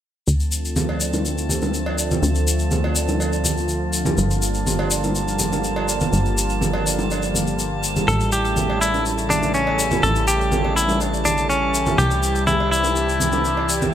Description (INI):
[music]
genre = progressive house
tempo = 123 BPM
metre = 4/4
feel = straight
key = D minor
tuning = A4 = 442 Hz
[part]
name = supersaw pad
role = sustained chords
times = 0.3-13.9 s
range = C3 to G4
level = -24 LUFS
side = equal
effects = low-pass filter
[part]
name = plucky analog bass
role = bass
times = 0.3-13.9 s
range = G1 to D2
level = -24 LUFS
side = equal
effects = none
[part]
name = egg shaker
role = percussion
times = 0.3-13.9 s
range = none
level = -26 LUFS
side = left 4 dB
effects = none
[part]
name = drifting glass-harmonics texture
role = texture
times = 0.6-13.9 s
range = A5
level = -30 LUFS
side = right 2 dB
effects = chorus, built-in reverb
[part]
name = congas, cowbell and bongos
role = percussion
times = 0.8-13.9 s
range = none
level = -25 LUFS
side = right 2 dB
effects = none
[part]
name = direct-recorded clean electric guitar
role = melody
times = 8.1-13.9 s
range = C#4 to A4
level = -20 LUFS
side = left 1 dB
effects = digital delay
[sound]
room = moderate recital hall reverb, RT60 1.7 s, studio reverb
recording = none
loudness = -18 LUFS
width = side -10 dB against mid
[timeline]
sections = 0.3-13.9 A section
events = filter sweep on supersaw synth 0.3-13.9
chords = 0.3 Dm7; 4.2 Gm7; 8.1 A7; 12.0 C